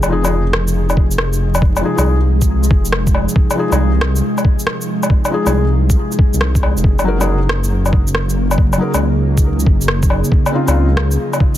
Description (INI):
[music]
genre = future garage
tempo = 138 BPM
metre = 4/4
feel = swing 67% on 16ths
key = F phrygian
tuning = A4 = 440 Hz
[part]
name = ethereal airy pad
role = sustained chords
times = 0.0-11.6 s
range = C3 to Ab4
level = -21 LUFS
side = right 1 dB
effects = ensemble chorus, built-in reverb, vintage 12-bit sampler grit, sidechain pumping
[part]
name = dark detuned saw bass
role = bass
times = 0.0-11.2 s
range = F1 to Db2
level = -16 LUFS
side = equal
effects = tube saturation, sidechain pumping
[part]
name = electronic shaker, woodblock and rim click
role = drums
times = 0.0-11.6 s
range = none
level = -20 LUFS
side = left 1 dB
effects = soft clipping on snare
[part]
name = felt-muted upright piano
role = accompaniment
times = 0.1-10.9 s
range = Db3 to Bb4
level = -22 LUFS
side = left 3 dB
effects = sidechain pumping, tape echo
[part]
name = electronic kick drum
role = drums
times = 1.0-11.5 s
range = none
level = -13 LUFS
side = equal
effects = none
[sound]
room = light reverb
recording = dense, heavily limited modern master, vinyl crackle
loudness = -12 LUFS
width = side -13 dB against mid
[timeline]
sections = 0.0-11.6 A section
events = none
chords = 0.0 Fm7; 6.8 Gb69; 10.3 Dbmaj9